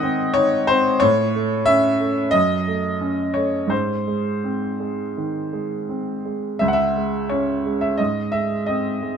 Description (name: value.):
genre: classical, romantic character piece for solo piano.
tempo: 82-92 BPM.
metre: 4/4.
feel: rubato.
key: unclear.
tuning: A4 = 441 Hz.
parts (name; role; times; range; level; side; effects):
clear baby grand piano; solo; 0.0-9.2 s; C#2 to G#5; -18 LUFS; equal; none.
room: light reverb.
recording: close, detailed microphones.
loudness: -18 LUFS.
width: side -7 dB against mid.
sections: 0.0-9.2 A section.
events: none.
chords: 0.0 G#; 1.0 A; 2.3 D#m7b5/F#; 3.7 G#; 6.6 C#5; 8.0 G#.